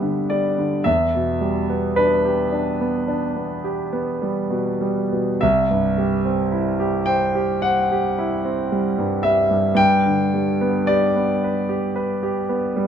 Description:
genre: classical, romantic nocturne for solo piano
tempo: 48-57 BPM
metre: 4/4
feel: rubato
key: G major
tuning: A4 = 440 Hz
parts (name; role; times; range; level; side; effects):
- clear concert grand piano; solo; 0.0-12.9 s; C2 to G5; -18 LUFS; equal; none
room: little or no reverb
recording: close, detailed microphones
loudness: -18 LUFS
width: side -8 dB against mid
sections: 0.0-12.9 A section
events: none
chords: 0.0 G; 0.9 Em7; 5.4 C; 9.8 G

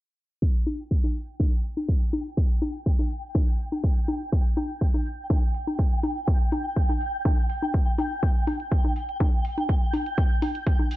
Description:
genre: progressive house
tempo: 123 BPM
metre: 4/4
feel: straight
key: unclear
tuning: A4 = 440 Hz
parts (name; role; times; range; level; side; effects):
- electronic kick drum; drums; 0.4-10.8 s; none; -23 LUFS; equal; small room reverb
- twinkling granular texture; texture; 2.2-11.0 s; G5; -33 LUFS; right 1 dB; built-in reverb, sidechain pumping
- electronic hi-hat; drums; 0.7-11.0 s; none; -51 LUFS; right 2 dB; sidechain pumping on hats, small room reverb
- congas; percussion; 0.7-10.9 s; none; -29 LUFS; left 2 dB; sidechain pumping on perc, small room reverb
room: digital ambience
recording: low-pass filter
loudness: -22 LUFS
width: side -16 dB against mid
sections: 0.4-11.0 A section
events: filter sweep 0.4-11.0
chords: none

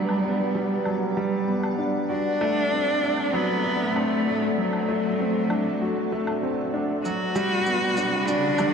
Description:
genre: piano and strings electronica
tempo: 97 BPM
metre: 4/4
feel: straight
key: G major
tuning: A4 = 440 Hz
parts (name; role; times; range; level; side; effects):
- warm cello; melody; 0.0-8.7 s; F#3 to F#4; -25 LUFS; equal; ping-pong delay
- granular cloud pad; sustained chords; 0.0-8.7 s; A3 to F#5; -29 LUFS; left 1 dB; built-in reverb
- warm grand piano; riff; 0.0-8.7 s; F#3 to F#4; -26 LUFS; right 1 dB; lush chorus, ping-pong delay
- woodblock and shaker; drums; 0.1-8.7 s; none; -39 LUFS; left 1 dB; none
- riser; sound effects; 7.6-8.7 s; none; -32 LUFS; right 2 dB; none
room: wet huge ambient reverb, RT60 7.8 s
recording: dreamy mix soaked in reverb, low-pass filter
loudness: -22 LUFS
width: side -6 dB against mid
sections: 0.0-7.0 A section; 7.0-8.7 B section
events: build-up 7.0-8.7; riser 7.6-8.7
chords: 0.0 Gmaj7; 2.1 D7; 7.0 Gmaj7

